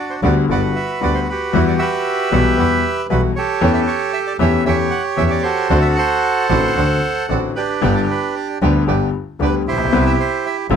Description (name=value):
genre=tango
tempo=115 BPM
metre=4/4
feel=rubato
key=G major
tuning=A4 = 440 Hz
part: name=bandoneon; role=melody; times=0.0-10.7 s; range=D4 to F#5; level=-19 LUFS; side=right 4 dB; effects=plate reverb
part: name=bright concert grand piano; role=accompaniment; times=0.2-10.8 s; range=G1 to G4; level=-19 LUFS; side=left 7 dB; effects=none
part: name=bandoneon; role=stabs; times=0.2-10.8 s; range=G3 to G4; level=-23 LUFS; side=right 6 dB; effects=none
part: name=clear double bass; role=bass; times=0.2-10.8 s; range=G1 to E2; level=-20 LUFS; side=right 2 dB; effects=none
room=light reverb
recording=none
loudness=-15 LUFS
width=side -7 dB against mid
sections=0.0-10.8 A section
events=none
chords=0.0 Gmaj7; 1.5 Emadd9; 3.6 A7/E; 5.7 D7; 7.8 G; 9.9 Cmaj7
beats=0.50 1.02 | 1.54 2.06 2.58 3.10 | 3.62 4.14 4.66 5.18 | 5.70 6.23 6.76 7.29 | 7.83 8.35 8.88 9.40 | 9.92 10.44